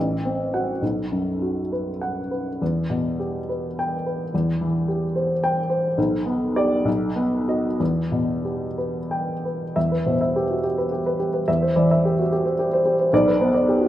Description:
classical, romantic character piece for solo piano; 60-76 BPM (dotted quarters); 6/8; rubato; E minor; A4 = 441 Hz
warm upright piano; solo; 0.0-13.9 s; A1 to G5; -20 LUFS; equal
wet recital hall reverb, RT60 1.4 s; -20 LUFS; side -13 dB against mid
0.0-9.8 A section; 9.8-13.9 A section
0.0 F#dim/A; 0.8 B5; 2.6 Em; 4.3 C/E; 6.0 G/B; 6.9 B; 7.8 Em; 11.5 C/E; 13.1 G/B
| 0.82 1.72 | 2.61 3.49 | 4.32 5.15 | 5.97 6.86 | 7.80 8.78 | 9.76 10.64 | 11.47 12.32 | 13.11

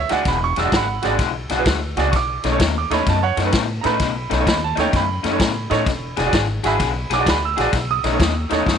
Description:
electric blues shuffle; 128 BPM; 4/4; swing 66% on 8ths; A4 = 440 Hz
bright upright piano; accompaniment; 0.0-8.8 s; D#4 to E6; -22 LUFS; right 11 dB
upright bass; bass; 0.0-8.8 s; E1 to A2; -24 LUFS; left 1 dB
raw garage guitar; riff; 0.1-8.8 s; B2 to G#4; -23 LUFS; left 14 dB; overdrive
vintage drum kit; drums; 0.1-8.8 s; kick drum, ride cymbal, snare drum; -22 LUFS; left 1 dB
light reverb, small room ambience; 1960s-style stereo with parts hard left and right, nothing above 11.0 kHz; -17 LUFS; side -7 dB against mid
0.0-8.8 A section
0.0 E9; 2.1 B9; 5.9 E9; 7.7 B9
| 0.27 0.73 1.20 1.67 | 2.13 2.60 3.07 3.54 | 4.00 4.47 4.94 5.40 | 5.87 6.34 6.80 7.27 | 7.74 8.20 8.67

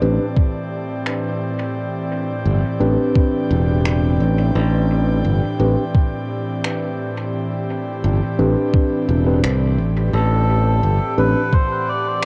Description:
ambient dub; 86 BPM; 4/4; straight; A minor; A4 = 441 Hz
airy breathy pad; sustained chords; 0.0-12.3 s; A2 to A5; -26 LUFS; equal; chorus
mellow tine electric piano; stabs; 0.0-11.4 s; C4 to B4; -25 LUFS; equal; dub echo
modern bright fingered electric bass; bass; 0.0-11.3 s; E1 to C2; -19 LUFS; equal
electronic kick drum; drums; 0.4-11.7 s; -17 LUFS; equal; cassette tape
electronic finger snaps; drums; 1.1-12.3 s; -31 LUFS; equal; overdrive, cassette tape, dub echo
melodica; melody; 10.1-12.3 s; A4 to D5; -24 LUFS; equal; cassette tape, dub echo
light reverb, digital ambience; home recording on cassette; -19 LUFS; mono
0.0-12.3 A section
0.0 Am11
0.37 1.06 | 1.76 2.46 3.16 3.85 | 4.55 5.25 5.95 6.65 | 7.34 8.04 8.74 9.44 | 10.13 10.83 11.53 12.23

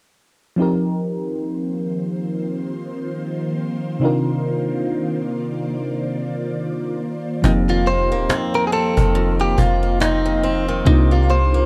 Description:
contemporary R&B; 70 BPM; 4/4; swing 58% on 16ths; A4 = 445 Hz
mellow FM electric piano; accompaniment; 0.6-11.7 s; C3 to Bb4; -25 LUFS; equal; chorus
ethereal airy pad; sustained chords; 1.3-11.7 s; Eb3 to D6; -30 LUFS; equal; ensemble chorus, built-in reverb, phaser
picked swing-style acoustic guitar; arpeggios; 7.4-11.7 s; F2 to C4; -27 LUFS; equal
soft 808-style bass; bass; 7.4-11.7 s; Eb1 to C2; -21 LUFS; equal
cajon; drums; 7.4-10.2 s; -24 LUFS; equal
direct-recorded clean electric guitar; melody; 7.5-11.7 s; Eb4 to C5; -23 LUFS; equal
light reverb; dark, warm production; -20 LUFS; mono
0.6-7.4 A section; 7.4-11.7 B section
hi-hats muted 7.4-11.7
0.6 F7sus4; 4.0 Cm11; 7.0 F7sus4; 10.9 Cm11
| 0.58 1.44 2.30 3.15 | 4.01 4.87 5.72 6.58 | 7.44 8.30 9.15 10.01 | 10.87

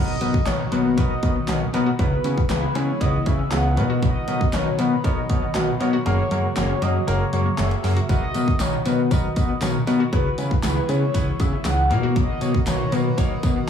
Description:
dance-pop; 118 BPM; 4/4; straight; B major; A4 = 440 Hz
mellow horn-like synth lead; melody; 0.0-13.7 s; B4 to F#5; -28 LUFS; equal; chorus, phaser, dub echo
clear concert grand piano; accompaniment; 0.0-13.6 s; A#3 to C#5; -29 LUFS; equal; sidechain pumping, dub echo
airy breathy pad; sustained chords; 0.0-13.7 s; B2 to A#4; -29 LUFS; left 1 dB; chorus, sidechain pumping
hollow square pluck; arpeggios; 0.0-13.6 s; F#3 to F#4; -34 LUFS; left 3 dB
fat analog bass; bass; 0.0-13.6 s; F#1 to C#3; -22 LUFS; left 1 dB; sidechain pumping
impact; sound effects; 0.0-2.0 s; -32 LUFS; equal
pop drum kit; drums; 0.2-13.6 s; handclaps, hi-hat, kick drum, snare drum; -24 LUFS; equal; dub echo
tambourine; percussion; 8.1-13.6 s; -40 LUFS; left 9 dB
light reverb; echo-heavy mix, studio ambience; -19 LUFS; side -8 dB against mid
0.0-13.7 A section
impact 0.0-2.0; kick muted 6.1-8.1
0.0 Bmaj7; 2.0 C#m7; 3.8 Bmaj7; 6.1 F#add9; 8.1 Bmaj7; 10.1 C#m7; 11.9 Bmaj7
0.47 0.97 1.48 | 1.99 2.50 3.01 3.52 | 4.03 4.53 5.04 5.55 | 6.06 6.57 7.08 7.58 | 8.09 8.60 9.11 9.62 | 10.13 10.64 11.14 11.65 | 12.16 12.67 13.18 13.69

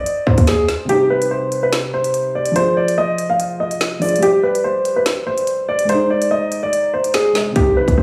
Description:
hip hop, drill; 144 BPM; 4/4; half-time; A4 = 440 Hz
dark concert grand piano; melody; 0.0-8.0 s; G4 to F5; -19 LUFS; equal; low-pass filter, digital delay
drill drum kit; drums; 0.1-8.0 s; hi-hat, kick drum, snare drum; -23 LUFS; equal
hard-hitting 808-style bass; bass; 0.3-0.7, 7.6-8.0 s; B1 to Ab2; -19 LUFS; equal
felt-muted upright piano; accompaniment; 0.8-8.0 s; C3 to Eb5; -25 LUFS; equal; low-pass filter
moderate lush hall reverb, RT60 1.9 s, studio reverb; -17 LUFS; mono
0.0-8.0 A section
kick muted 0.9-7.6
0.0 Ab5; 0.9 Cm; 2.6 Fm; 4.2 Gsus4; 5.9 Ab
0.06 0.48 | 0.89 1.31 1.73 2.14 | 2.56 2.98 3.39 3.81 | 4.23 4.64 5.06 5.48 | 5.89 6.31 6.73 7.14 | 7.56 7.98

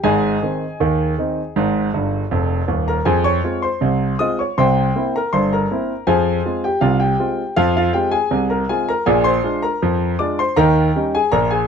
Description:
ragtime piano; 80 BPM; 2/4; straight; A4 = 441 Hz
clear grand piano; solo; 0.0-11.7 s; Eb1 to Eb6; -16 LUFS; equal
light reverb; -16 LUFS; side -6 dB against mid
0.0-3.1 A section; 3.1-11.7 B section
grand piano fill 1.9-3.1
0.0 Ab; 3.1 Fm; 4.6 C7; 6.1 Fm; 9.1 Bb7; 10.6 Eb7
| 0.04 0.80 | 1.56 2.32 | 3.07 3.82 | 4.58 5.33 | 6.07 6.82 | 7.57 8.32 | 9.07 9.82 | 10.57 11.32

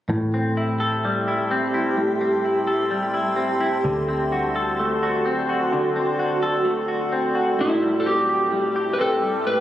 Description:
dream pop; 64 BPM; 4/4; straight; A dorian; A4 = 440 Hz
granular cloud pad; sustained chords; 0.9-9.6 s; F#4 to C6; -24 LUFS; equal; built-in reverb
semi-hollow electric guitar; arpeggios; 0.1-9.6 s; A2 to A4; -22 LUFS; equal; analog chorus, tape echo
vintage muted picked electric bass; bass; 0.1-7.6 s; A1 to D2; -29 LUFS; equal
electric slide guitar; melody; 7.6-9.6 s; E4 to B4; -21 LUFS; equal; tape echo
moderate huge ambient reverb, RT60 9.2 s; recorded on a phone in the room, studio reverb, compression; -19 LUFS; side -12 dB against mid
0.1-7.6 A section; 7.6-9.6 B section
0.1 Am7; 3.8 D7; 7.6 Am7
| 0.09 1.03 1.96 2.90 | 3.84 4.78 5.71 6.65 | 7.59 8.53 9.46

